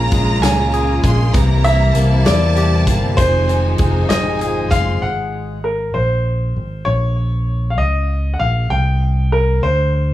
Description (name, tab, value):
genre	six-eight pop ballad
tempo	65 BPM (dotted quarters)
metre	6/8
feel	straight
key	Bb minor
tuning	A4 = 438 Hz
part	clear baby grand piano	melody	0.0-10.1 s	Bb4 to Bb5	-20 LUFS	equal	analog delay
part	dark studio violin section	second line	0.0-5.0 s	Ab5 to C6	-26 LUFS	right 2 dB	none
part	direct-recorded clean electric guitar	accompaniment	0.0-5.6 s	F2 to Ab4	-22 LUFS	left 4 dB	none
part	rich studio string section	sustained chords	0.0-5.0 s	C3 to F4	-24 LUFS	equal	none
part	picked steel-string acoustic guitar	arpeggios	0.0-5.6 s	Eb3 to G4	-27 LUFS	right 6 dB	analog delay
part	fingered electric bass	bass	0.0-10.1 s	F1 to E2	-17 LUFS	equal	none
part	natural country drum kit	drums	0.1-4.9 s	hi-hat, kick drum, snare drum	-18 LUFS	equal	none
room	studio reverb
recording	small room ambience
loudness	-14 LUFS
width	side -14 dB against mid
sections	0.0-5.0 A section; 5.0-10.1 B section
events	none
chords	0.0 Bbm7; 1.3 C7; 3.2 Fm7; 5.0 Ab7; 6.9 Bbm; 8.7 C5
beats	0.43 | 1.34 2.26 | 3.18 4.10 | 5.02 5.94 | 6.86 7.78 | 8.70 9.62